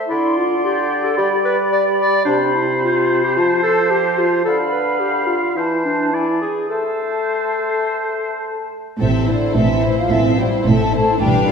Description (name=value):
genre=quick classical-period movement for symphony orchestra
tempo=108 BPM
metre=4/4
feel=rubato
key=A minor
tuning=A4 = 439 Hz
part: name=mellow bassoon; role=accompaniment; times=0.0-8.7 s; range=C3 to A3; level=-21 LUFS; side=right 2 dB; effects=none
part: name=clear clarinet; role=second line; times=0.1-8.7 s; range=D4 to D5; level=-19 LUFS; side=left 2 dB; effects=none
part: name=clear oboe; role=second line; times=0.1-8.7 s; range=C5 to F5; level=-23 LUFS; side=right 1 dB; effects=none
part: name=large flute ensemble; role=second line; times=0.1-11.5 s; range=C5 to C6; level=-24 LUFS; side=left 1 dB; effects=none
part: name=warm chamber violin section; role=melody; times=9.0-11.5 s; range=C5 to F5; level=-27 LUFS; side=left 2 dB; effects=none
part: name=warm studio violin section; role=second line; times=9.0-11.5 s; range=A4 to C5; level=-26 LUFS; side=left 4 dB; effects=none
part: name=rich studio viola section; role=accompaniment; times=9.0-11.5 s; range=C4 to F4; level=-22 LUFS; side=right 3 dB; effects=none
part: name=mellow French horn section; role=sustained chords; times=9.0-11.5 s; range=C3 to A3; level=-22 LUFS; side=left 2 dB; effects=none
part: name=warm chamber cello section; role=bass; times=9.0-11.5 s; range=A2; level=-21 LUFS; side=right 1 dB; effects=none
part: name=warm chamber double bass section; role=bass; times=9.0-11.5 s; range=A1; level=-18 LUFS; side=right 2 dB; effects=none
room=wet scoring stage reverb, RT60 1.8 s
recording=heard from further back in the room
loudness=-15 LUFS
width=side -6 dB against mid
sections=0.0-9.0 A section; 9.0-11.5 A section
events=none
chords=0.1 Dm11; 1.2 G; 2.3 Cmaj7(no3); 3.4 F; 4.5 Bdim/D; 5.6 Am/E; 6.7 Am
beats=| 0.11 0.64 1.18 1.73 | 2.27 2.82 3.37 3.92 | 4.46 5.02 5.57 6.14 | 6.71 7.28 7.85 8.42 | 8.99 9.55 10.11 10.66 | 11.21